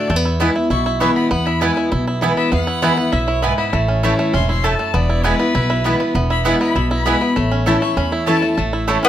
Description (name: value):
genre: bluegrass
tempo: 198 BPM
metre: 4/4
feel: straight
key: unclear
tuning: A4 = 440 Hz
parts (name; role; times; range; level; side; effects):
- bluegrass banjo; melody; 0.0-9.1 s; A3 to A4; -21 LUFS; right 4 dB; none
- rich fiddle; second line; 0.0-8.6 s; E4 to C#6; -24 LUFS; left 5 dB; none
- picked steel-string acoustic guitar; accompaniment; 0.0-9.1 s; E2 to E4; -20 LUFS; left 2 dB; none
- upright bass; bass; 0.1-9.0 s; E1 to E2; -20 LUFS; equal; none
- mandolin; stabs; 0.4-9.0 s; A3 to A5; -20 LUFS; right 4 dB; none
- mandolin; melody; 9.0-9.1 s; B3; -9 LUFS; left 3 dB; none
room: light reverb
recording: close, detailed microphones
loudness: -15 LUFS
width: side -11 dB against mid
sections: 0.0-8.6 A section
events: fiddle solo 0.0-8.6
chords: 0.1 E; 3.7 A; 4.9 E; 7.4 A